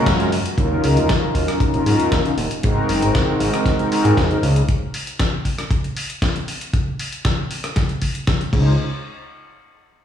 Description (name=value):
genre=nu-disco, nu disco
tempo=117 BPM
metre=4/4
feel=straight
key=unclear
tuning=A4 = 442 Hz
part: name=mellow synth brass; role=accompaniment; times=0.0-4.4, 8.5-8.7 s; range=Gb3 to C5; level=-20 LUFS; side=equal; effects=chorus, dub echo
part: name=fat analog bass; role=bass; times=0.0-4.6, 8.5-8.8 s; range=Eb1 to Ab2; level=-18 LUFS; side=equal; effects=none
part: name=dusty soul sampler-style drum kit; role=drums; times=0.1-8.6 s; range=crash cymbal, hi-hat, rim click, snare drum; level=-25 LUFS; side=left 1 dB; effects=none
part: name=kick drum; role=drums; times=0.1-8.6 s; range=none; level=-21 LUFS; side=left 1 dB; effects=none
room=light reverb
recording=played on a big sound system in a bare room, large studio reverb, studio reverb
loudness=-17 LUFS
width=side -9 dB against mid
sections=0.6-8.8 A section; 8.8-10.0 B section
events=band accent 0.1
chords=0.0 Gbmaj7; 0.6 Ebm7; 2.6 Ab7; 4.4 N.C.; 8.5 Dbmaj7; 8.8 N.C.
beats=0.07 | 0.58 1.10 1.61 2.12 | 2.63 3.15 3.66 4.17 | 4.68 5.20 5.71 6.22 | 6.74 7.25 7.76 8.28